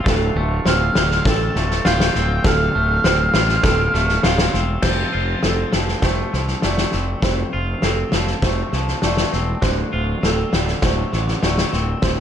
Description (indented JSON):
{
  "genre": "post-rock",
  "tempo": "100 BPM",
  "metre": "4/4",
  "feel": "straight",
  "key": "unclear",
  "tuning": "A4 = 441 Hz",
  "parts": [
    { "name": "pedal steel guitar", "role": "sustained chords", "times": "0.0-12.2 s", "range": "D3 to C5", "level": "-34 LUFS", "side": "right 2 dB", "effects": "none" },
    { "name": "felt-muted upright piano", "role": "arpeggios", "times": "0.0-12.2 s", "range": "A4 to F5", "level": "-28 LUFS", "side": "right 4 dB", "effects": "tape echo" },
    { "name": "twangy electric guitar", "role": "arpeggios", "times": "0.0-12.2 s", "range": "D2 to F4", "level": "-26 LUFS", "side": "left 2 dB", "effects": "spring reverb, tape echo" },
    { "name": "fuzz fingered electric bass", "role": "bass", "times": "0.1-12.2 s", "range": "D1 to C2", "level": "-21 LUFS", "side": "equal", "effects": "overdrive" },
    { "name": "loose indie drum kit", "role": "drums", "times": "0.1-12.2 s", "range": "crash cymbal, kick drum, snare drum", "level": "-20 LUFS", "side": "left 1 dB", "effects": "none" },
    { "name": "octave-fuzz lead guitar", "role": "melody", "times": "0.7-4.2 s", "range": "F5 to A5", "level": "-21 LUFS", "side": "right 1 dB", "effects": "distortion, tape echo" }
  ],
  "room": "light reverb",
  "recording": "dark, warm production",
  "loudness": "-16 LUFS",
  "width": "side -9 dB against mid",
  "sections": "0.0-4.8 A section; 4.8-12.2 B section",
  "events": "none",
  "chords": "0.1 Dm7; 4.8 F; 9.6 Dm7"
}